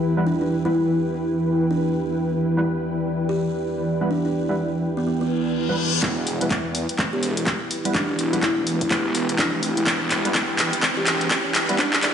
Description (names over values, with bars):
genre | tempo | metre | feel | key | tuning
bass house | 125 BPM | 4/4 | swing 60% on 16ths | E minor | A4 = 440 Hz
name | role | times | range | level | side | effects
dark analog pad | sustained chords | 0.0-12.1 s | E3 to D5 | -27 LUFS | equal | chorus, sidechain pumping
granular cloud pad | texture | 0.0-12.1 s | E4 to G5 | -29 LUFS | equal | built-in reverb, sidechain pumping
percussive organ stab | stabs | 0.2-11.8 s | G3 to B4 | -29 LUFS | right 2 dB | ensemble chorus, sidechain pumping, dub echo
buzzing kalimba | melody | 0.3-12.0 s | B3 to G4 | -27 LUFS | equal | dub echo
reverse cymbal and riser | sound effects | 5.3-12.1 s | none | -31 LUFS | left 1 dB | none
phased detuned saw bass | bass | 6.0-12.1 s | E1 to E2 | -27 LUFS | right 1 dB | phaser, tube saturation, sidechain pumping, high-pass filter
electronic kick drum | drums | 6.0-11.9 s | none | -27 LUFS | equal | high-pass filter on kick, high-pass filter on room
house drum kit | drums | 6.0-12.1 s | handclaps, hi-hat | -23 LUFS | equal | low-pass filter on snare, low-pass filter on hats, low-pass filter on room
room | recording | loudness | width
moderate lush hall reverb, RT60 1.8 s | played on a big sound system in a bare room, stone room reverb, high-pass filter, nothing above 10.9 kHz | -20 LUFS | side -8 dB against mid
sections
0.0-6.0 A section; 6.0-12.1 B section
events
reverse cymbal 5.3-6.0; build-up 6.0-12.1; drum fill 6.0-12.1; riser 6.0-12.1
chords
0.0 Em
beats
| 0.27 0.75 1.23 1.71 | 2.19 2.67 3.15 3.63 | 4.11 4.59 5.07 5.55 | 6.03 6.51 6.99 7.47 | 7.95 8.43 8.91 9.39 | 9.87 10.35 10.83 11.31 | 11.79